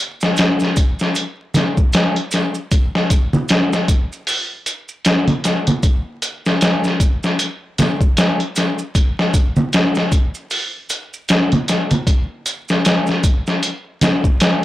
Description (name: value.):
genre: trip hop.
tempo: 77 BPM.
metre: 4/4.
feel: swing 58% on 16ths.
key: none.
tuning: none.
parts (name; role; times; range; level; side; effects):
trip hop sampler-style drum kit; drums; 0.2-14.6 s; hi-hat, kick drum, snare drum; -15 LUFS; equal; overdrive.
maracas and congas; percussion; 0.2-14.6 s; none; -21 LUFS; right 1 dB; none.
room: light reverb, digital ambience.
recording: blown-out, overdriven recording, vinyl crackle, overdrive.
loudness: -15 LUFS.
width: side -15 dB against mid.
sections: 0.0-14.6 A section.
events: none.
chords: none.